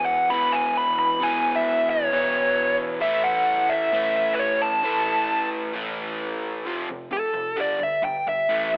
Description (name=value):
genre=rock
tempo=132 BPM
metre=4/4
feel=straight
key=A mixolydian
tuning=A4 = 440 Hz
part: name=dark smooth lead guitar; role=melody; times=0.0-8.7 s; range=A4 to B5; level=-21 LUFS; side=equal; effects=overdrive, slapback echo
part: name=overdriven semi-hollow guitar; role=riff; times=0.0-8.8 s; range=E2 to A3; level=-27 LUFS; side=equal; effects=none
room=moderate plate reverb, RT60 3.2 s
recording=telephone sound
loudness=-20 LUFS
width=side -38 dB against mid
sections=0.0-6.7 A section; 6.7-8.8 B section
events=lead electric guitar solo 6.7-8.8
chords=0.0 E5; 3.0 A5; 6.7 F; 7.6 G5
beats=0.31 0.76 | 1.22 1.67 2.12 2.58 | 3.03 3.48 3.94 4.39 | 4.84 5.30 5.75 6.21 | 6.67 7.12 7.58 8.04 | 8.49